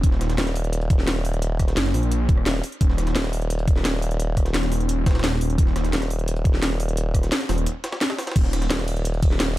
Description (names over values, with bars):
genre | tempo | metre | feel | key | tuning
dark technical drum and bass | 173 BPM | 4/4 | straight | unclear | A4 = 440 Hz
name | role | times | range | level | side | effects
wide detuned saw bass | bass | 0.0-8.7 s | Eb1 to Bb1 | -22 LUFS | equal | chorus, overdrive, sidechain pumping
drum and bass drum kit | drums | 0.0-9.5 s | crash cymbal, hi-hat, ride cymbal, rim click, snare drum | -26 LUFS | equal | none
electronic kick drum | drums | 0.0-9.3 s | none | -19 LUFS | equal | none
jungle sampler-style drum kit | drums | 0.0-9.6 s | hi-hat, snare drum | -34 LUFS | equal | overdrive, high-pass filter on hats, high-pass filter on snare
formant-sweep wobble bass | bass | 0.4-9.6 s | Eb1 | -24 LUFS | equal | chorus
room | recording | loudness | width
little or no reverb | dark, warm production | -20 LUFS | side -16 dB against mid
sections
0.0-9.6 A section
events
break 7.7-8.4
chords
none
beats
| 0.04 0.38 0.73 1.07 | 1.42 1.77 2.12 2.46 | 2.81 3.16 3.50 3.85 | 4.20 4.54 4.89 5.24 | 5.58 5.93 6.28 6.62 | 6.97 7.32 7.67 8.01 | 8.36 8.71 9.05 9.40